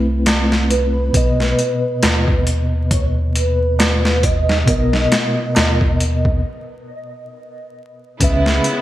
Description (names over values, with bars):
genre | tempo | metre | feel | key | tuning
trip hop | 68 BPM | 4/4 | swing 57% on 16ths | unclear | A4 = 441 Hz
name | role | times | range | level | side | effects
mellow tine electric piano | accompaniment | 0.0-8.8 s | B2 to E5 | -21 LUFS | equal | medium stereo tremolo, tape echo
soft dub sub bass | bass | 0.0-8.6 s | B1 to D#2 | -18 LUFS | equal | none
boom bap sampler-style drum kit | drums | 0.3-8.8 s | hi-hat, kick drum, snare drum | -18 LUFS | equal | overdrive, gated reverb
tabla | percussion | 0.3-5.8 s | none | -29 LUFS | right 2 dB | none
pure breathy sine lead | melody | 0.7-6.4 s | B4 to D#5 | -23 LUFS | right 1 dB | ensemble chorus, dub echo
clear studio string section | sustained chords | 8.2-8.8 s | C#3 to E4 | -21 LUFS | right 1 dB | none
room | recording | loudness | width
light reverb, digital ambience | bright 1980s-style digital production, vinyl crackle | -14 LUFS | side -14 dB against mid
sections
0.0-8.2 A section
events
break 6.4-8.2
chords
0.0 Amadd9; 1.1 Bmaj7; 8.2 C#m7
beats
0.26 | 1.14 2.02 2.91 3.79 | 4.67 5.55 6.44 7.32 | 8.20